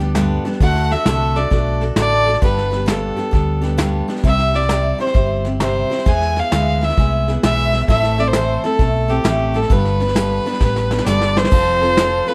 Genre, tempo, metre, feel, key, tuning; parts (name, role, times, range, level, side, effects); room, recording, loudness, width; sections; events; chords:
honky-tonk and classic country; 132 BPM; 4/4; swing 66% on 8ths; A4 = 440 Hz
clear fiddle; melody; 0.0-12.3 s; G4 to G#5; -22 LUFS; equal; slapback echo
picked steel-string acoustic guitar; accompaniment; 0.0-12.3 s; G2 to B4; -23 LUFS; equal
fingered electric bass; bass; 0.0-12.2 s; F1 to E2; -22 LUFS; equal
vintage brush drum kit; drums; 0.1-12.3 s; crash cymbal, hi-hat, kick drum, snare drum; -22 LUFS; equal
light reverb; -17 LUFS; mono
0.0-11.5 A section
drum fill 10.6-11.5
0.0 G; 0.6 D; 2.4 G; 4.2 C; 6.1 E; 7.9 Am; 9.7 G; 11.5 F